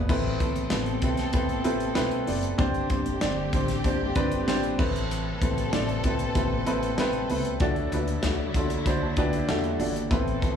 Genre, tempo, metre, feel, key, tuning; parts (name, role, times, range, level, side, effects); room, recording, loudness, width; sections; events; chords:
piano-driven pop; 96 BPM; 4/4; straight; A dorian; A4 = 440 Hz
dark upright piano; accompaniment; 0.0-10.6 s; G2 to C6; -27 LUFS; right 1 dB; slapback echo
warm studio string section; sustained chords; 0.0-10.6 s; C3 to B4; -34 LUFS; left 1 dB
upright bass; bass; 0.0-10.6 s; F#1 to E2; -31 LUFS; left 1 dB
modern studio drum kit; drums; 0.1-10.6 s; crash cymbal, hi-hat, kick drum, snare drum; -29 LUFS; left 1 dB
light reverb, small room ambience; live gig heard through the venue's PA, club reverb, studio ambience; -24 LUFS; side -8 dB against mid
0.1-10.6 A section
upright piano fill 8.2-10.1
0.1 Amadd9; 2.6 Gsus4; 4.8 Amadd9; 7.6 Dadd9